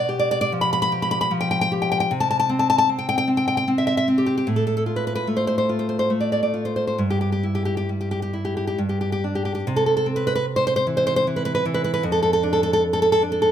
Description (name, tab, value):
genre	romantic piece for solo classical guitar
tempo	66-77 BPM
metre	3/4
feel	rubato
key	C major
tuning	A4 = 440 Hz
part	nylon-string guitar	solo	0.0-13.5 s	F2 to B5	-19 LUFS	equal	none
room	moderate recital hall reverb, RT60 1.6 s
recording	close, detailed microphones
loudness	-19 LUFS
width	side -9 dB against mid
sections	0.0-9.6 A section; 9.6-13.5 B section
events	none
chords	0.0 G7/B; 2.1 N.C.; 4.5 F/A; 7.0 Em/G; 8.8 G5; 9.6 C; 12.0 Dm/F